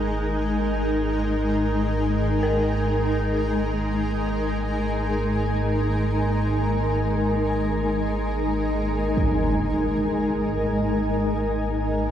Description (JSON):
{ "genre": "dark ambient drone", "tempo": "free time", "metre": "none", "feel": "none", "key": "unclear", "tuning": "A4 = 440 Hz", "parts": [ { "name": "granular cloud pad", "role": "sustained chords", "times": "0.0-12.1 s", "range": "G#3 to G#5", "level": "-23 LUFS", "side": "left 1 dB", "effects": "built-in reverb, shimmer reverb" }, { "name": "dark detuned synth bell", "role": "arpeggios", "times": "0.0-12.1 s", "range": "A#4", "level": "-34 LUFS", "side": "left 1 dB", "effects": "none" }, { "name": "deep rumbling drone", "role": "drone", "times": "0.0-12.1 s", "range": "G#1 to G#2", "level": "-26 LUFS", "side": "right 1 dB", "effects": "built-in reverb, wide subtle chorus" }, { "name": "impact", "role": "percussion", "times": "9.2-9.4 s", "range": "none", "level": "-29 LUFS", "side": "equal", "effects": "low-pass filter on sfx" } ], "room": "wet cathedral reverb, RT60 6.1 s", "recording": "dreamy mix soaked in reverb", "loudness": "-21 LUFS", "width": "side -10 dB against mid", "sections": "0.0-9.2 A section; 9.2-12.1 B section", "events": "none", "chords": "0.0 G#5", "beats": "free time" }